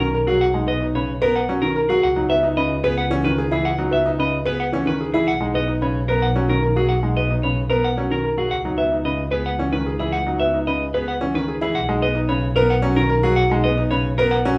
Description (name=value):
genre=classical, minimalist pattern music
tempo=111 BPM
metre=3/4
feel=straight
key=unclear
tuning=A4 = 439 Hz
part: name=clean electric guitar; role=melody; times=0.0-14.5 s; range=G#4 to F#5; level=-26 LUFS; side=equal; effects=none
part: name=warm concert grand piano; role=accompaniment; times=0.0-14.6 s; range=C#3 to B3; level=-26 LUFS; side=equal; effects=none
part: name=clear baby grand piano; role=arpeggios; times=0.0-14.6 s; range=C#4 to B4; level=-26 LUFS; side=equal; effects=none
part: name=warm double bass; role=bass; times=0.0-14.6 s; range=B1 to C#2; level=-26 LUFS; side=equal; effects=none
room=wet large studio reverb, RT60 0.9 s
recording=heard from further back in the room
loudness=-20 LUFS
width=mono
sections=0.0-14.6 A section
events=none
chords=0.0 Bmaj9; 2.0 C#m9; 5.3 Bmaj9; 8.5 C#m9; 11.8 Bmaj9